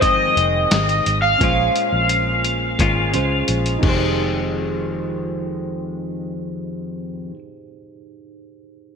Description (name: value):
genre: indie pop, bedroom pop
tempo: 87 BPM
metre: 4/4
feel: straight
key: F minor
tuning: A4 = 439 Hz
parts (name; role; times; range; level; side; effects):
- overdriven slide guitar; melody; 0.0-3.4 s; Eb5 to F5; -18 LUFS; equal; lush chorus, digital delay
- semi-hollow electric guitar; accompaniment; 0.0-7.4 s; F2 to F4; -25 LUFS; left 3 dB; lush chorus, vibrato effect
- tine electric piano; accompaniment; 0.0-9.0 s; Db4 to G5; -28 LUFS; right 5 dB; medium stereo tremolo, cassette tape
- vintage muted fingered electric bass; bass; 0.0-7.1 s; F1 to Db2; -23 LUFS; equal; none
- lo-fi sampler-style drum kit; drums; 0.0-4.0 s; crash cymbal, hi-hat, kick drum, snare drum; -23 LUFS; left 1 dB; none
room: moderate lush hall reverb, RT60 2.0 s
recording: bright 1980s-style digital production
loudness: -17 LUFS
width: side -6 dB against mid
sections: 0.0-4.2 A section; 4.2-6.9 B section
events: drum fill 1.4-4.2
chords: 0.0 Fm7; 1.4 Bbm7; 3.8 Fm7